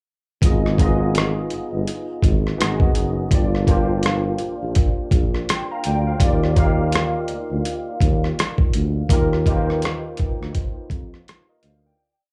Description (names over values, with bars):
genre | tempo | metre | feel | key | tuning
R&B, neo-soul | 83 BPM | 4/4 | swing 58% on 16ths | Eb major | A4 = 441 Hz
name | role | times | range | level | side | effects
barky tine electric piano | accompaniment | 0.4-12.2 s | Bb3 to C6 | -27 LUFS | equal | overdrive, ensemble chorus, slapback echo
dark tuba | bass | 0.4-11.9 s | Gb1 to F2 | -24 LUFS | equal | none
boom bap sampler-style drum kit | drums | 0.4-11.8 s | hi-hat, kick drum, rim click | -21 LUFS | equal | none
room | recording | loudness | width
little or no reverb | live gig heard through the venue's PA, club reverb | -20 LUFS | mono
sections
0.4-12.0 verse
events
fade-out 9.1-12.0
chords
0.4 Abm6; 2.6 Abm7; 3.3 Gm7; 6.2 Ebmaj9